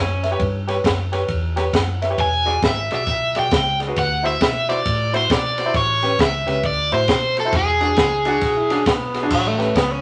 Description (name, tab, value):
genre	electric blues shuffle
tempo	135 BPM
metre	4/4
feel	swing 64% on 8ths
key	unclear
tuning	A4 = 440 Hz
part	bright tenor saxophone	second line	0.0-0.5, 8.3-10.0 s	F#3 to F#4	-26 LUFS	equal	none
part	vintage muted fingered electric bass	bass	0.0-10.0 s	E1 to B2	-28 LUFS	equal	none
part	bright upright piano	accompaniment	0.2-9.7 s	C#4 to F#5	-26 LUFS	equal	none
part	compact cocktail drum kit	drums	0.2-9.9 s	crash cymbal, kick drum, ride cymbal, snare drum	-24 LUFS	equal	none
part	cranked stack guitar	melody	2.2-8.8 s	G#4 to G#5	-22 LUFS	equal	overdrive
room	wet studio reverb, RT60 0.6 s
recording	none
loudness	-19 LUFS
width	mono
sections	0.0-9.3 A section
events	upright piano fill 1.5-2.2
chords	0.0 A7 (rootless); 2.2 E7; 4.0 D7; 5.7 A7; 6.6 D7; 7.5 E7; 9.3 A7